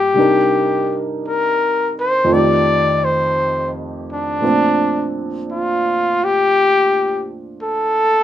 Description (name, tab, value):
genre	jazz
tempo	56 BPM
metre	4/4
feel	swing 68% on 8ths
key	Bb major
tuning	A4 = 441 Hz
part	breathy trumpet	melody	0.0-8.2 s	D4 to D5	-15 LUFS	left 2 dB	none
part	warm upright piano	accompaniment	0.0-8.2 s	F2 to Bb4	-20 LUFS	right 2 dB	none
room	moderate studio reverb, RT60 0.5 s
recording	band playing live in one room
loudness	-14 LUFS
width	side -11 dB against mid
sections	0.0-8.2 A section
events	none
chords	0.2 Cm9; 2.3 F9; 4.4 Bbmaj9